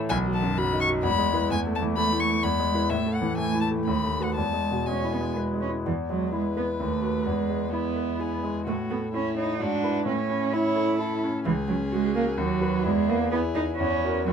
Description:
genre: quick classical-period movement for piano trio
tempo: 129 BPM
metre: 3/4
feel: rubato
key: E major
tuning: A4 = 440 Hz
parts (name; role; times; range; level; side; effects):
- bright concert grand piano; accompaniment; 0.0-14.3 s; B1 to C#5; -26 LUFS; left 2 dB; none
- warm violin; melody; 0.1-14.3 s; E4 to C#6; -30 LUFS; left 4 dB; none
- dark cello; second line; 0.1-14.3 s; D#3 to E4; -28 LUFS; right 7 dB; none
room: light reverb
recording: close, detailed microphones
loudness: -23 LUFS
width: side -7 dB against mid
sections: 0.0-5.9 A section; 5.9-14.3 A section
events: none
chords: 0.1 B; 1.0 E; 1.5 A5/E; 2.4 E; 2.9 A5; 3.9 B7/D#; 4.4 E; 6.8 B7/D#; 7.3 E; 8.7 A; 9.6 E7/G#; 10.1 A; 11.5 F#/C#; 12.4 B/D#; 12.8 E; 13.8 F#7/E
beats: | 0.10 0.57 1.04 | 1.50 1.97 2.43 | 2.90 3.37 3.86 | 4.36 4.86 5.36 | 5.86 6.33 6.80 | 7.26 7.73 8.20 | 8.66 9.13 9.60 | 10.06 10.53 10.99 | 11.45 11.92 12.38 | 12.84 13.31 13.78 | 14.26

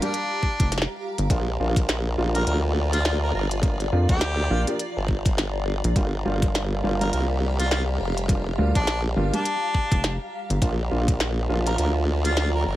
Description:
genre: glitch hop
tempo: 103 BPM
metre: 4/4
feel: swing 59% on 16ths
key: G minor pentatonic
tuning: A4 = 441 Hz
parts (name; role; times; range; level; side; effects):
- warm harmonica; melody; 0.0-12.8 s; D4 to Bb4; -29 LUFS; left 1 dB; vintage 12-bit sampler grit, digital delay
- dark baby grand piano; stabs; 0.0-12.8 s; F3 to G4; -29 LUFS; right 1 dB; sidechain pumping, digital delay
- glitchy drum kit; drums; 0.0-12.5 s; hi-hat, snare drum; -27 LUFS; equal; studio reverb
- granular cloud pad; texture; 0.0-12.8 s; F4 to Bb5; -33 LUFS; equal; built-in reverb, sidechain pumping
- electronic kick drum; drums; 0.4-11.2 s; none; -22 LUFS; equal; studio reverb
- rubbery square bass; bass; 0.6-10.6 s; F1 to F2; -23 LUFS; equal; none
- formant-sweep wobble bass; bass; 1.3-12.8 s; F1 to D2; -24 LUFS; equal; chorus
room: light reverb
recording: vinyl crackle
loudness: -21 LUFS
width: side -15 dB against mid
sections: 0.0-12.8 A section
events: none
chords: 0.0 Gm7; 1.3 Bb; 6.0 Gm7; 10.6 Bb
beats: 0.14 0.72 | 1.30 1.89 2.47 3.05 | 3.63 4.21 4.80 5.38 | 5.96 6.54 7.13 7.71 | 8.29 8.88 9.46 10.04 | 10.62 11.21 11.79 12.37

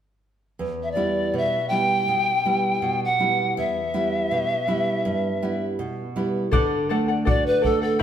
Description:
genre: andean folk, Andean ensemble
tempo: free time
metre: none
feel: none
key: E minor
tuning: A4 = 441 Hz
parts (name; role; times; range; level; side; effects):
- nylon-string guitar; accompaniment; 0.6-8.0 s; E2 to F#4; -25 LUFS; right 2 dB; none
- breathy bright polished pan flute; melody; 0.8-8.0 s; A4 to G5; -22 LUFS; equal; none
- charango; accompaniment; 6.5-8.0 s; E4 to G5; -25 LUFS; left 4 dB; none
- bombo; percussion; 6.5-7.8 s; none; -23 LUFS; equal; none
room: wet stone room reverb, RT60 1.3 s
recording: band playing live in one room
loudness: -20 LUFS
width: side -9 dB against mid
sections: 0.6-6.5 A section; 6.5-8.0 B section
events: none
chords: 0.6 Em; 6.5 D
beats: free time

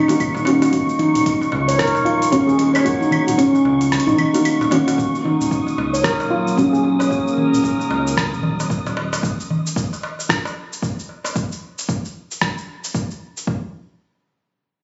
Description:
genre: organic downtempo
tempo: 113 BPM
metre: 4/4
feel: swing 60% on 16ths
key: Eb minor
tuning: A4 = 437 Hz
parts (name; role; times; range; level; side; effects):
- felt-muted upright piano; accompaniment; 0.0-7.1 s; Eb3 to Bb4; -26 LUFS; equal; sidechain pumping, tape echo
- warm analog pad; sustained chords; 0.0-9.2 s; Gb3 to Bb4; -27 LUFS; equal; chorus, sidechain pumping
- handpan; arpeggios; 0.0-7.1 s; Db4 to Db5; -20 LUFS; equal; low-pass filter, tape echo
- round analog bass; bass; 0.0-9.2 s; Eb1 to Db2; -28 LUFS; equal; tube saturation, sidechain pumping
- wind-like tuned noise texture; texture; 0.0-9.2 s; Db6 to Eb6; -29 LUFS; equal; built-in reverb
- dusty soul sampler-style drum kit; drums; 0.1-13.5 s; claves, hi-hat, rim click, shaker; -27 LUFS; equal; none
- darbuka; percussion; 0.1-11.3 s; none; -30 LUFS; equal; none
- electronic kick drum; drums; 0.2-13.6 s; none; -28 LUFS; equal; overdrive
room: moderate concert hall reverb, RT60 2.2 s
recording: recorded on a phone in the room, studio reverb, compression, nothing above 7.8 kHz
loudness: -19 LUFS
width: mono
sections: 0.0-5.0 A section; 5.0-13.5 B section; 13.5-14.8 C section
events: kick drops out 3.9-5.0; filter sweep on handpan 5.0-7.1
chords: 0.0 Ebm7; 13.5 N.C.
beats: 0.20 | 0.73 1.26 1.79 2.33 | 2.86 3.39 3.92 4.45 | 4.98 5.51 6.04 6.57 | 7.10 7.63 8.16 8.70 | 9.23 9.76 10.29 10.82 | 11.35 11.88 12.41 12.94 | 13.47

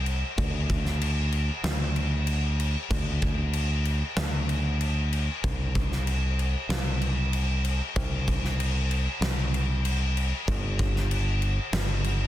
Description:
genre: rock, shoegaze and dream pop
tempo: 95 BPM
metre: 4/4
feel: straight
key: unclear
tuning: A4 = 440 Hz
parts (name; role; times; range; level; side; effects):
- fingered electric bass; bass; 0.0-12.3 s; G1 to D2; -26 LUFS; equal; none
- huge arena drum kit; drums; 0.1-12.2 s; crash cymbal, kick drum, snare drum; -28 LUFS; left 1 dB; none
room: little or no reverb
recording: dense, heavily limited modern master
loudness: -24 LUFS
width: side -13 dB against mid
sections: 0.0-12.3 A section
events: none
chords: none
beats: | 0.39 1.02 1.65 2.28 | 2.91 3.54 4.18 4.81 | 5.44 6.07 6.70 7.33 | 7.96 8.59 9.22 9.85 | 10.48 11.11 11.73

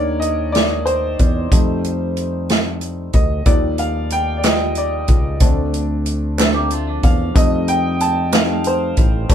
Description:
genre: slow gospel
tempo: 62 BPM (dotted quarters)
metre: 6/8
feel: straight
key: unclear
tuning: A4 = 440 Hz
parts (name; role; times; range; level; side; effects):
- warm upright piano; accompaniment; 0.0-9.3 s; Eb3 to A5; -20 LUFS; equal; none
- fingered electric bass; bass; 0.0-9.3 s; A1 to F2; -21 LUFS; equal; none
- swinging big-band drum kit; drums; 0.2-9.3 s; hi-hat, kick drum, snare drum; -16 LUFS; equal; none
- group handclap; percussion; 4.4-8.6 s; none; -25 LUFS; right 4 dB; none
- clean electric guitar; second line; 6.4-7.3 s; F3 to A4; -24 LUFS; right 2 dB; none
room: moderate small room reverb, RT60 0.5 s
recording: band playing live in one room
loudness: -15 LUFS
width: side -9 dB against mid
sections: 0.0-9.3 A section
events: upright piano solo 0.0-9.3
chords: 0.0 Cm7/Eb; 1.5 F7; 3.5 Ebmaj7; 5.4 Dm9; 7.4 F7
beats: 0.54 | 1.52 2.49 | 3.47 4.44 | 5.41 6.39 | 7.36 8.33 | 9.30

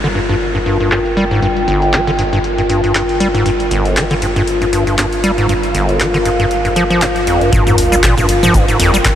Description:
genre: acid house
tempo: 118 BPM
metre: 4/4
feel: swing 56% on 16ths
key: G minor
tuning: A4 = 440 Hz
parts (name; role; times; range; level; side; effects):
- acid bass, square; riff; 0.0-9.1 s; G1 to G3; -15 LUFS; equal; overdrive, cassette tape, diffuse ambient delay
- warm sub bass; bass; 0.0-9.0 s; G1; -23 LUFS; equal; sidechain pumping
- punchy analog drum machine; drums; 0.0-9.2 s; cabasa, handclaps, hi-hat, toms; -20 LUFS; equal; overdrive, low-pass filter on perc, low-pass filter on hats, low-pass filter on snare, low-pass filter on toms
- warbly tape-like pad; texture; 0.0-9.2 s; F4 to G5; -16 LUFS; left 1 dB; chorus, built-in reverb, sidechain pumping
- electronic kick drum; drums; 7.5-9.2 s; none; -14 LUFS; equal; none
- sub drop; sound effects; 7.5-9.2 s; none; -21 LUFS; equal; none
room: wet huge ambient reverb, RT60 8.3 s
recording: dreamy mix soaked in reverb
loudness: -11 LUFS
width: side -10 dB against mid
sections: 0.0-7.5 A section; 7.5-9.2 B section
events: drop 7.5-9.2; impact 7.5-9.2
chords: 0.0 Gm7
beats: 0.41 0.92 | 1.42 1.93 2.44 2.95 | 3.46 3.96 4.47 4.98 | 5.49 6.00 6.51 7.02 | 7.53 8.03 8.54 9.05

